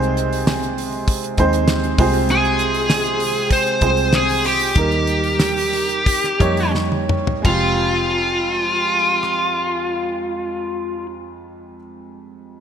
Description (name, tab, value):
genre	piano-driven pop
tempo	84-99 BPM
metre	4/4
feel	straight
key	F minor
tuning	A4 = 440 Hz
part	clear upright piano	accompaniment	0.0-12.6 s	F2 to Db5	-22 LUFS	right 3 dB	none
part	vintage muted picked electric bass	bass	0.0-11.8 s	F1 to F2	-24 LUFS	left 1 dB	none
part	damped 70s drum kit	drums	0.0-9.4 s	crash cymbal, hi-hat, kick drum, rim click, snare drum, toms	-21 LUFS	equal	none
part	smooth overdriven lead guitar	melody	2.3-11.1 s	F4 to C5	-18 LUFS	left 1 dB	none
room	moderate lush hall reverb, RT60 1.9 s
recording	bright 1980s-style digital production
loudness	-16 LUFS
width	side -8 dB against mid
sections	0.0-7.4 A section; 7.4-10.3 B section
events	slowing down 2.3-7.4; drum fill 6.7-7.4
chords	0.0 Ab/C; 2.0 Fm/C; 4.8 Eb; 7.4 Fmadd9